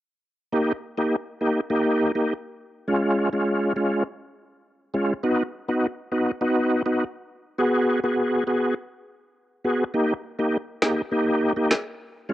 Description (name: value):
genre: dancehall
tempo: 102 BPM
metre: 4/4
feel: straight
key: unclear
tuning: A4 = 440 Hz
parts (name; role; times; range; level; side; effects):
- bright tonewheel organ; accompaniment; 0.5-12.3 s; G#3 to G#4; -21 LUFS; equal; chorus vibrato, fast rotary speaker
- electronic snare drum and finger snaps; drums; 10.8-11.9 s; none; -23 LUFS; equal; cassette tape
room: light reverb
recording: home recording on cassette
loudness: -22 LUFS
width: side -14 dB against mid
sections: 0.5-12.3 A section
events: none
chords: 0.5 D#; 2.9 C#; 5.2 B; 7.6 G#m7; 9.9 D#